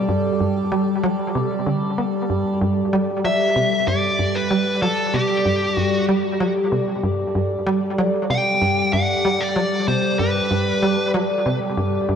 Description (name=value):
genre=ambient, sequencer-driven space music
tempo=95 BPM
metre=4/4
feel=straight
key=G major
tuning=A4 = 440 Hz
part: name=evolving wavetable pad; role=sustained chords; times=0.0-12.2 s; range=G3 to D5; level=-22 LUFS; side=equal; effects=chorus, built-in reverb, phaser
part: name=tight sequencer bass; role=riff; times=0.1-12.2 s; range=G2 to B3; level=-23 LUFS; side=right 1 dB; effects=lush chorus, tape echo
part: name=dark smooth lead guitar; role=melody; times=3.2-11.1 s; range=G4 to G5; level=-22 LUFS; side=equal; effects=overdrive, tape echo
room=wet concert hall reverb, RT60 2.1 s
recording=none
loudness=-18 LUFS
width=side -8 dB against mid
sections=0.0-12.2 A section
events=none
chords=0.0 Gsus2